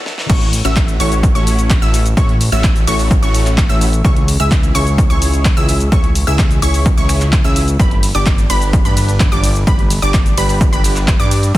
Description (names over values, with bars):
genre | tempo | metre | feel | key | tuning
EDM, festival progressive house | 128 BPM | 4/4 | straight | A major | A4 = 440 Hz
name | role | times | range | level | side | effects
big-room dance drum kit | drums | 0.1-11.6 s | crash cymbal, finger snaps, handclaps, hi-hat, ride cymbal, shaker, snare drum | -22 LUFS | left 1 dB | studio reverb
wide unison pluck | arpeggios | 0.3-11.6 s | B5 to E6 | -22 LUFS | equal | sidechain pumping, dub echo
supersaw stab | riff | 0.3-11.6 s | A3 to E5 | -23 LUFS | equal | sidechain pumping, dub echo
fat analog bass | bass | 0.3-11.6 s | G1 to G2 | -16 LUFS | equal | sidechain pumping
electronic kick drum | drums | 0.3-11.6 s | none | -14 LUFS | equal | overdrive, studio reverb
room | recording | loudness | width
little or no reverb | dense, heavily limited modern master, high-pass filter | -11 LUFS | side -16 dB against mid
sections
0.3-11.6 A section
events
drum fill 0.0; stop 0.0; drop 0.3-11.6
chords
0.3 A6; 4.0 C#m; 7.8 G